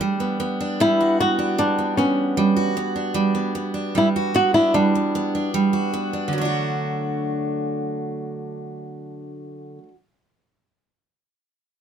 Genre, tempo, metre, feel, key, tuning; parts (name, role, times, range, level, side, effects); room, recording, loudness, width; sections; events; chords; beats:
pop; 76 BPM; 4/4; straight; D major; A4 = 441 Hz
picked steel-string acoustic guitar; accompaniment; 0.0-10.0 s; D3 to F#4; -22 LUFS; right 2 dB
flamenco guitar; melody; 0.8-5.5 s; C#4 to F#4; -19 LUFS; equal
light reverb; close, detailed microphones; -19 LUFS; side -8 dB against mid
0.0-6.3 A section; 6.3-9.5 B section
0.0 Gmaj7; 6.3 D
0.77 1.56 2.35 | 3.14 3.93 4.72 5.51 | 6.30 7.09 7.89 8.68